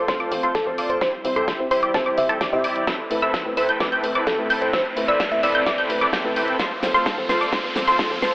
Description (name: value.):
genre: EDM, festival progressive house.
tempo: 129 BPM.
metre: 4/4.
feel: straight.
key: A minor.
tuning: A4 = 439 Hz.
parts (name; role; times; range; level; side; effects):
lush unison pad; sustained chords; 0.0-8.3 s; G3 to C5; -30 LUFS; equal; chorus, sidechain pumping.
wide unison pluck; arpeggios; 0.0-8.3 s; A5 to G6; -24 LUFS; equal; sidechain pumping, digital delay.
dense compressed supersaw; riff; 0.0-8.3 s; C4 to G5; -26 LUFS; equal; sidechain pumping, low-pass filter, digital delay.
riser; sound effects; 3.0-8.3 s; none; -32 LUFS; equal; none.
felt-muted upright piano; accompaniment; 0.1-8.2 s; A2 to C5; -28 LUFS; equal; sidechain pumping, digital delay.
big-room dance drum kit; drums; 0.1-8.3 s; cabasa, hi-hat, snare drum; -28 LUFS; equal; none.
electronic kick drum; drums; 0.1-8.1 s; none; -26 LUFS; equal; high-pass filter on kick.
bell-like FM electric piano; melody; 0.5-8.3 s; A4 to E5; -25 LUFS; equal; chorus, tremolo, digital delay.
room: wet lush hall reverb, RT60 1.8 s, digital ambience.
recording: telephone sound.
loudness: -18 LUFS.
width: side -22 dB against mid.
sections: 0.0-8.3 A section.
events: build-up 0.0-8.3; drum fill 0.0-8.3; filter sweep on supersaw synth 0.0-8.3; riser 3.0-8.3.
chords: 0.0 F; 1.0 C; 2.9 Amadd9; 6.6 F.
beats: 0.08 0.55 | 1.01 1.48 1.94 2.41 | 2.88 3.34 3.81 4.27 | 4.74 5.20 5.67 6.13 | 6.60 7.06 7.53 7.99.